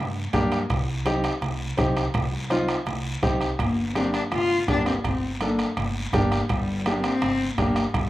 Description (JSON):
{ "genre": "latin, cumbia", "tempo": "166 BPM", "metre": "4/4", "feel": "straight", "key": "G minor", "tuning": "A4 = 440 Hz", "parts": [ { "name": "upright bass", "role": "bass", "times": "0.0-8.1 s", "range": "G1 to G2", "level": "-30 LUFS", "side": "equal", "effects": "none" }, { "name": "warm upright piano", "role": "accompaniment", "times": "0.3-7.8 s", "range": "Bb3 to A4", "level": "-26 LUFS", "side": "equal", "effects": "none" }, { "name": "bombo", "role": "percussion", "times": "0.3-8.1 s", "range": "none", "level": "-28 LUFS", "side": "right 1 dB", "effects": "none" }, { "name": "congas", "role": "percussion", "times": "0.3-8.1 s", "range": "none", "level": "-34 LUFS", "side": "right 1 dB", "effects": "none" }, { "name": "guiro", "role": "percussion", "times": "0.3-8.1 s", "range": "none", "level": "-38 LUFS", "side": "left 2 dB", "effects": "none" }, { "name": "timbales", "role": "percussion", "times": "0.3-8.1 s", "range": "none", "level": "-36 LUFS", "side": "right 6 dB", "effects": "slapback echo" }, { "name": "dark cello", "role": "melody", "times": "3.6-8.1 s", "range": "G3 to F4", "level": "-26 LUFS", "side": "left 2 dB", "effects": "none" } ], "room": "little or no reverb", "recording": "recorded outdoors, with no room sound", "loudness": "-22 LUFS", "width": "side -15 dB against mid", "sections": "0.0-8.1 A section", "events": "none", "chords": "0.0 Gm; 0.7 Cm; 3.6 Gm", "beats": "0.33 | 0.70 1.06 1.42 1.78 | 2.15 2.51 2.87 3.23 | 3.60 3.96 4.32 4.68 | 5.05 5.41 5.77 6.13 | 6.50 6.86 7.22 7.58 | 7.94" }